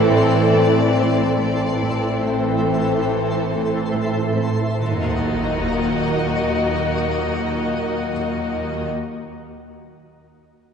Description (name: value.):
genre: cinematic, suspense film score.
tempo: 71 BPM.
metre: 4/4.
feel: straight.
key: unclear.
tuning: A4 = 440 Hz.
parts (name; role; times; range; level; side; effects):
rich chamber violin section; melody; 0.0-8.9 s; C5 to Eb5; -29 LUFS; left 6 dB; none.
rich chamber violin section; second line; 0.0-8.9 s; C4 to A4; -24 LUFS; left 2 dB; none.
warm studio viola section; accompaniment; 0.0-8.9 s; Eb3 to Bb3; -26 LUFS; right 2 dB; none.
mellow French horn section; sustained chords; 0.0-8.9 s; Gb3 to C4; -28 LUFS; left 5 dB; none.
twinkling granular texture; sustained chords; 0.1-8.9 s; E4 to Eb5; -27 LUFS; equal; built-in reverb.
warm trombone section; sustained chords; 0.0-8.9 s; A2 to E3; -28 LUFS; right 4 dB; none.
warm chamber cello section; bass; 0.0-8.9 s; Eb2 to A2; -28 LUFS; right 1 dB; none.
warm chamber double bass section; bass; 0.0-8.9 s; A1 to Eb2; -27 LUFS; right 4 dB; none.
warm chamber cello section; riff; 0.1-4.6 s; A2 to A3; -33 LUFS; right 4 dB; none.
timpani; percussion; 4.8-9.3 s; Eb3; -35 LUFS; right 4 dB; none.
sub drop; sound effects; 4.8-9.3 s; none; -30 LUFS; equal; none.
room: wet church reverb, RT60 2.8 s.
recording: recorded in a church or concert hall, nothing above 10.5 kHz.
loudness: -18 LUFS.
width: side -6 dB against mid.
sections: 0.0-4.8 A section; 4.8-8.1 B section.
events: impact 4.8-8.1.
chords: 0.0 Am; 4.8 Ebm.